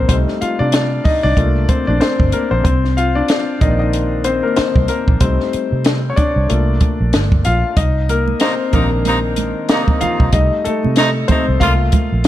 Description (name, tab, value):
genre	lush 1970s-style soul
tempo	94 BPM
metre	4/4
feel	swing 58% on 16ths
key	C dorian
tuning	A4 = 440 Hz
part	clear grand piano	accompaniment	0.0-12.3 s	Eb3 to F5	-18 LUFS	left 3 dB	none
part	vintage muted fingered electric bass	bass	0.0-12.3 s	G1 to C3	-17 LUFS	right 1 dB	none
part	compact cocktail drum kit	drums	0.1-12.3 s	hi-hat, kick drum, snare drum	-16 LUFS	equal	none
part	congas	percussion	7.8-12.1 s	none	-25 LUFS	right 9 dB	none
part	clear horn section	stabs	8.4-12.3 s	C3 to F4	-20 LUFS	right 1 dB	none
room	small room ambience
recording	none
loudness	-13 LUFS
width	side -13 dB against mid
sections	0.0-12.3 A section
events	grand piano solo 0.0-12.3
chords	0.1 F7/C; 1.4 Gm7 (rootless); 2.6 Cm7; 5.2 Cm69; 6.5 Gm7; 7.8 Cm7; 10.3 Cm6; 11.6 Gm7 (rootless)